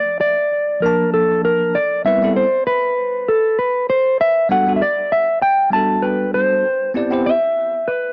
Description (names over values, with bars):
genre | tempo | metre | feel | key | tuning
chillout | 98 BPM | 4/4 | swing 56% on 16ths | G major | A4 = 441 Hz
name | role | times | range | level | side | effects
mellow electric guitar | melody | 0.0-8.1 s | A4 to A5 | -18 LUFS | equal | subtle chorus, analog delay
bell-like tine electric piano | accompaniment | 0.8-7.3 s | F3 to A5 | -24 LUFS | equal | none
room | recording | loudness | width
digital ambience | dry, gritty hardware recording, cassette tape | -17 LUFS | mono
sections
0.0-8.1 A section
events
none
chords
0.0 Bbmaj7; 1.8 Am9; 4.2 Gmaj9; 6.7 Cmaj7